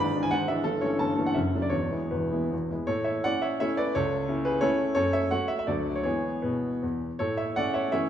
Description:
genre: classical, romantic triple-time dance for piano with dotted rhythms.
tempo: 140-184 BPM.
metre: 3/4.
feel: rubato.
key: A major.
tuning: A4 = 438 Hz.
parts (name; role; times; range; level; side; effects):
warm grand piano; solo; 0.0-8.1 s; E1 to B5; -25 LUFS; equal; none.
room: wet recital hall reverb, RT60 1.6 s.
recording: recorded in a church or concert hall.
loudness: -25 LUFS.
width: side -10 dB against mid.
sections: 0.0-2.9 A section; 2.9-8.1 B section.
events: none.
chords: 0.0 E7/G#; 0.7 A7/G; 1.4 D/F#; 1.7 E; 2.9 A; 4.0 A/C#; 5.0 F#m; 5.7 D; 6.0 E; 7.2 A.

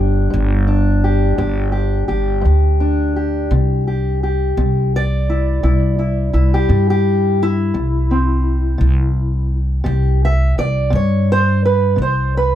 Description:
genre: blues.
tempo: 57 BPM (dotted quarters).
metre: 12/8.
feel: straight.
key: unclear.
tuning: A4 = 440 Hz.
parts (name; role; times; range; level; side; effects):
fingerpicked steel-string acoustic guitar; melody; 0.0-12.6 s; G2 to E5; -19 LUFS; equal; none.
upright bass; bass; 0.0-12.6 s; G1 to G2; -15 LUFS; equal; none.
room: little or no reverb.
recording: close, detailed microphones.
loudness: -14 LUFS.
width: side -11 dB against mid.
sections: 0.0-12.6 A section.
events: steel-string acoustic guitar solo 0.0-12.6.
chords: 0.0 G5; 3.5 C.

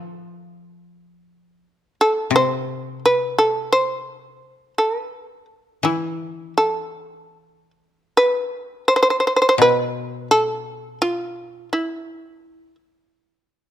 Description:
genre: japanese traditional, Japanese chamber music.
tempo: 75-88 BPM.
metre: 4/4.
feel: rubato.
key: A hirajoshi.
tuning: A4 = 439 Hz.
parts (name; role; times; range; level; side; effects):
shamisen; melody; 0.0-12.8 s; E4 to C5; -17 LUFS; right 1 dB; none.
koto; accompaniment; 0.0-11.7 s; A2 to F3; -26 LUFS; left 7 dB; none.
room: light reverb.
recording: close, detailed microphones.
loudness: -18 LUFS.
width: side -11 dB against mid.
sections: 0.0-8.1 A section; 8.1-13.7 B section.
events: none.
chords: none.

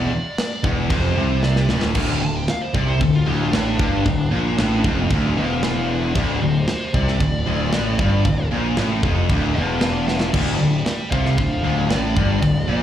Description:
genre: heavy metal.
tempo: 115 BPM.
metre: 4/4.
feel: straight.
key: D minor.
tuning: A4 = 442 Hz.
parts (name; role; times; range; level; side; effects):
high-gain lead guitar; melody; 0.0-12.8 s; D4 to A5; -27 LUFS; equal; distortion.
heavy high-gain guitar; riff; 0.0-12.8 s; D2 to C3; -28 LUFS; left 1 dB; distortion, slapback echo.
high-gain distorted guitar; riff; 0.0-12.8 s; D2 to C3; -25 LUFS; left 9 dB; distortion, slapback echo.
sludgy distorted guitar; riff; 0.0-12.8 s; D2 to C3; -24 LUFS; right 6 dB; overdrive.
fuzz picked electric bass; bass; 0.0-12.8 s; D1 to C2; -23 LUFS; equal; overdrive.
tight metal drum kit; drums; 0.4-12.5 s; crash cymbal, kick drum, snare drum; -24 LUFS; equal; none.
room: small room ambience.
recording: live gig heard through the venue's PA, club reverb.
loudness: -17 LUFS.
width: side -10 dB against mid.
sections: 0.0-2.0 A section; 2.0-12.8 B section.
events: drum fill 1.4-2.0, 10.1; lead electric guitar solo 2.0-12.8.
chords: 0.0 Dm.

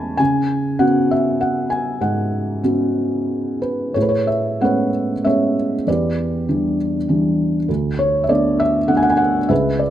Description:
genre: classical, lyrical solo piano.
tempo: 89-102 BPM.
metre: 3/4.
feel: rubato.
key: A major from 4.0 s.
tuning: A4 = 440 Hz.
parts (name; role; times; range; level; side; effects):
felt-muted upright piano; solo; 0.0-9.9 s; C#2 to C#6; -16 LUFS; equal; none.
room: light reverb.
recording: close, detailed microphones.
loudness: -16 LUFS.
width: side -11 dB against mid.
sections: 0.0-4.0 A section; 4.0-9.9 B section.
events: none.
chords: 0.2 C#7sus4; 4.0 Amaj9; 5.9 Em7; 7.7 Bm7/D.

